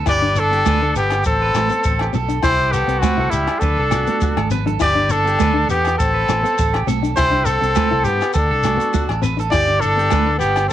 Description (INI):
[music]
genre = highlife guitar band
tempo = 102 BPM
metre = 4/4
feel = straight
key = G major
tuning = A4 = 442 Hz
[part]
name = nylon-string guitar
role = accompaniment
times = 0.0-10.5 s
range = B3 to E4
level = -27 LUFS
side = left 7 dB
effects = cassette tape
[part]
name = electric guitar at the edge of break-up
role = arpeggios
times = 0.0-10.7 s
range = F#4 to D5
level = -26 LUFS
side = right 9 dB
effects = cassette tape, tape echo
[part]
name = fingered electric bass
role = bass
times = 0.0-10.7 s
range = G1 to G2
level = -22 LUFS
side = equal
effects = none
[part]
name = clear trumpet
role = melody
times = 0.1-10.7 s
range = E4 to D5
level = -18 LUFS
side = equal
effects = cassette tape
[part]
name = edgy tenor saxophone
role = second line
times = 0.1-10.7 s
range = G3 to G4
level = -26 LUFS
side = left 8 dB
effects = cassette tape
[part]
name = compact cocktail drum kit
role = drums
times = 0.1-10.7 s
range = hi-hat, kick drum, rim click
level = -23 LUFS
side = equal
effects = cassette tape
[part]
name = agogo bells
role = percussion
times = 0.1-10.7 s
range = none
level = -29 LUFS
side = left 10 dB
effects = none
[part]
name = congas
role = percussion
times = 0.1-10.7 s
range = none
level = -25 LUFS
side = right 11 dB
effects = none
[part]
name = shekere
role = percussion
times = 0.1-10.7 s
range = none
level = -29 LUFS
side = left 4 dB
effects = none
[sound]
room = light reverb, studio reverb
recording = home recording on cassette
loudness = -15 LUFS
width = side -12 dB against mid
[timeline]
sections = 0.0-10.7 A section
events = drum fill 4.1-4.8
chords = 0.1 G; 1.2 Am; 2.4 C; 3.6 D; 4.8 G6; 6.0 Am; 7.2 C; 8.3 D; 9.5 G